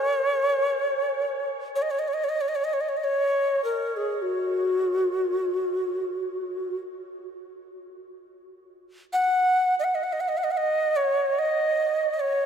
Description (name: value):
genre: world meditative, free-time meditation music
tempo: free time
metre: none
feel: none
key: unclear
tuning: A4 = 440 Hz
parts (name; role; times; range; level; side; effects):
- breathy Native American-style cedar flute; melody; 0.0-12.5 s; F#4 to F#5; -23 LUFS; equal; none
- vibraphone with medium hard mallets; texture; 0.0-4.7 s; G#5; -44 LUFS; left 2 dB; none
room: wet huge ambient reverb, RT60 7.4 s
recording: none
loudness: -23 LUFS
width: side -7 dB against mid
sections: 0.0-12.5 A section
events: none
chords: none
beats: free time